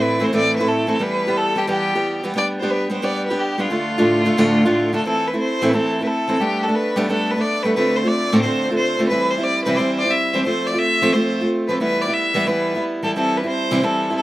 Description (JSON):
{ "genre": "celtic folk, Celtic hornpipe", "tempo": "178 BPM", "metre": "4/4", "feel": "swing 64% on 8ths", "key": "D dorian", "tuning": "A4 = 441 Hz", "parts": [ { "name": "rich fiddle", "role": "melody", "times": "0.0-14.2 s", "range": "F4 to E5", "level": "-21 LUFS", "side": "left 1 dB", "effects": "slapback echo" }, { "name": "fingerpicked steel-string acoustic guitar", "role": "accompaniment", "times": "0.0-14.2 s", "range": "D2 to G4", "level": "-19 LUFS", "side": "right 1 dB", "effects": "none" } ], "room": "light reverb", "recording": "recorded outdoors, with no room sound", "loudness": "-17 LUFS", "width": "side -16 dB against mid", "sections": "0.0-5.1 A section; 5.1-14.2 B section", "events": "none", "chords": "0.0 Am; 1.0 Em; 2.4 G; 3.7 Dm; 5.1 Am; 6.4 Gadd9; 7.8 Dm7; 9.1 C; 10.5 F; 11.8 Em; 13.2 C", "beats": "0.33 0.67 | 1.00 1.34 1.68 2.02 | 2.36 2.69 3.03 3.37 | 3.71 4.04 4.38 4.72 | 5.06 5.39 5.73 6.07 | 6.41 6.74 7.08 7.42 | 7.76 8.09 8.43 8.77 | 9.11 9.44 9.78 10.12 | 10.46 10.79 11.13 11.47 | 11.81 12.14 12.48 12.82 | 13.16 13.49 13.83 14.17" }